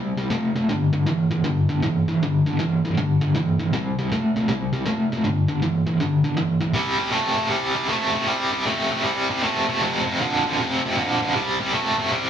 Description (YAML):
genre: blues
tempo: 158 BPM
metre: 4/4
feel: swing 65% on 8ths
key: C major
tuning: A4 = 441 Hz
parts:
  - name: overdriven electric guitar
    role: solo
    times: 0.0-12.3 s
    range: F2 to A3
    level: -20 LUFS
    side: equal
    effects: tremolo
room: wet large studio reverb, RT60 1.1 s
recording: band playing live in one room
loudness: -20 LUFS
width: side -9 dB against mid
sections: 0.0-6.8 A section; 6.8-12.3 B section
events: none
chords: 0.0 C5; 0.7 G5; 3.7 C5; 5.2 G5; 6.8 C5; 9.8 F5; 11.3 C5